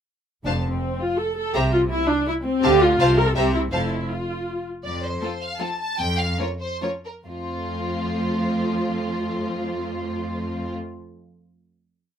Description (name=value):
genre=quick classical-period movement for string orchestra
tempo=132-167 BPM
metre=3/4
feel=straight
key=F major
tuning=A4 = 440 Hz
part: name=dark studio viola section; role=accompaniment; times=0.4-10.7 s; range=F3 to Bb4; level=-23 LUFS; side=equal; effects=none
part: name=warm studio double bass section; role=bass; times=0.4-4.0 s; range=F1 to D2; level=-28 LUFS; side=right 1 dB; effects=none
part: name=rich studio violin section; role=melody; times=0.5-10.7 s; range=F4 to Bb5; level=-29 LUFS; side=equal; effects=none
part: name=rich studio violin section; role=second line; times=0.5-10.7 s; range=C4 to F5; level=-30 LUFS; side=equal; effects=none
part: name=rich studio cello section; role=bass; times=0.5-10.7 s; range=F2 to D3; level=-29 LUFS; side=equal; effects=none
room=light reverb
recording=none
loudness=-21 LUFS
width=side -8 dB against mid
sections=0.5-4.8 A section; 4.8-7.3 coda; 7.3-10.0 final chord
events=slowing down 4.3-7.3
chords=0.5 F; 1.6 C; 2.6 Dm; 3.0 F/C; 3.4 C7; 3.7 N.C.; 4.8 F; 6.0 Bbm/F (rootless); 7.3 F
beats=| 0.45 0.82 1.19 | 1.55 1.91 2.28 | 2.64 3.00 3.36 | 3.73 4.10 4.47 | 4.85 5.22 5.60 | 5.98 6.39 6.81 | 7.26 7.71 8.16 | 8.61 9.06 9.51